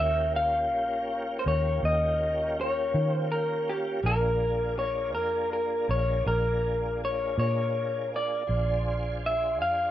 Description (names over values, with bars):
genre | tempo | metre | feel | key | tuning
slow blues | 54 BPM (dotted quarters) | 12/8 | straight | Bb mixolydian | A4 = 439 Hz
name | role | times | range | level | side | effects
electric guitar through a small old amp | melody | 0.0-9.9 s | G4 to F5 | -27 LUFS | left 1 dB | harmonic tremolo
tonewheel organ | sustained chords | 0.0-9.9 s | Bb3 to C5 | -35 LUFS | equal | chorus vibrato, slow rotary speaker
vintage muted fingered electric bass | bass | 0.0-9.9 s | Bb1 to Eb3 | -30 LUFS | equal | none
room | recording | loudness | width
moderate studio reverb, RT60 0.6 s | rough home demo mix | -25 LUFS | side -12 dB against mid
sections
0.0-9.9 A section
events
none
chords
0.0 Eb9; 4.0 Bb9